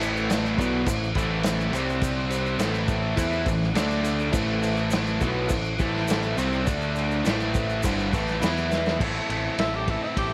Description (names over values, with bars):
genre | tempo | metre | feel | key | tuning
classic rock | 103 BPM | 4/4 | straight | A minor | A4 = 439 Hz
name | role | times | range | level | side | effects
reed electric piano | accompaniment | 0.0-9.0 s | C4 to B5 | -36 LUFS | equal | none
crunchy overdriven guitar | riff | 0.0-9.0 s | G2 to E4 | -35 LUFS | equal | none
overdriven electric guitar | riff | 0.0-10.3 s | G2 to A4 | -33 LUFS | equal | spring reverb
tight distorted guitar | riff | 0.0-10.3 s | G2 to A4 | -32 LUFS | equal | distortion
growling picked electric bass | bass | 0.0-10.3 s | G1 to E2 | -32 LUFS | equal | overdrive
vintage drum kit | drums | 0.0-10.3 s | crash cymbal, kick drum, ride cymbal, snare drum | -30 LUFS | equal | none
tube shaker | percussion | 0.0-8.9 s | none | -45 LUFS | equal | none
raspy tenor saxophone | melody | 9.6-10.3 s | E4 to G4 | -30 LUFS | equal | none
room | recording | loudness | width
light reverb, studio reverb | none | -25 LUFS | mono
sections
0.0-9.0 A section; 9.0-10.3 B section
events
reed electric piano fill 7.8-9.0; drum fill 8.7; tenor saxophone solo 9.0-10.3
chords
0.0 Am; 1.7 C5; 2.6 Am; 3.8 D5; 4.3 Am; 6.7 D5; 7.3 Am; 8.4 E5; 9.0 Am